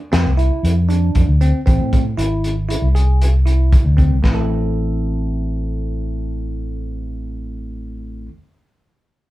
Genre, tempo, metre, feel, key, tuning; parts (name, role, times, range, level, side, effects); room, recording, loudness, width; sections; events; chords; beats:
progressive instrumental, band music in an uneven meter; 117 BPM; 5/4; straight; A harmonic minor; A4 = 439 Hz
bell-like tine electric piano; arpeggios; 0.1-8.3 s; A3 to A4; -25 LUFS; right 1 dB; phaser
fingered electric bass; bass; 0.1-8.3 s; G#1 to A2; -17 LUFS; equal
crunchy breakbeat drum kit; drums; 0.1-4.4 s; hi-hat, kick drum, snare drum; -17 LUFS; equal
moderate studio reverb, RT60 0.6 s; band playing live in one room; -15 LUFS; side -16 dB against mid
0.0-4.2 A section; 4.2-6.8 B section
0.0 F5; 1.7 Am
0.12 0.64 1.15 | 1.66 2.17 2.69 3.20 3.71 | 4.23 4.74 5.25 5.77 6.28